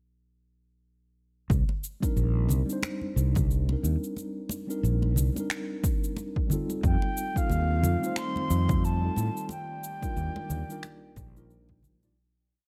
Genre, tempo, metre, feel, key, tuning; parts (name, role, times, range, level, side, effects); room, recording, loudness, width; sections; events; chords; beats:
sunset chillout; 90 BPM; 4/4; swing 58% on 16ths; C dorian; A4 = 440 Hz
fretless electric bass; bass; 1.5-12.1 s; Bb1 to A2; -28 LUFS; equal
electronic cabasa and finger snaps; drums; 1.5-12.1 s; -38 LUFS; equal; overdrive
electronic kick drum; drums; 1.5-11.8 s; -30 LUFS; equal; overdrive
congas; percussion; 1.7-12.1 s; -37 LUFS; equal
mellow tine electric piano; accompaniment; 2.0-12.2 s; G3 to D5; -37 LUFS; equal; low-pass filter
mellow concert flute; melody; 6.8-11.5 s; F5 to C6; -37 LUFS; equal; delay
airy breathy pad; sustained chords; 7.3-12.1 s; Eb3 to D5; -41 LUFS; equal; chorus
little or no reverb; faint mains hum; -28 LUFS; mono
1.5-12.2 groove
fade-out 8.6-12.2
1.5 Cm9; 6.8 F9; 9.5 Ebmaj7
| 1.50 2.17 2.83 3.50 | 4.17 4.83 5.50 6.17 | 6.83 7.50 8.17 8.83 | 9.50 10.17 10.83 11.50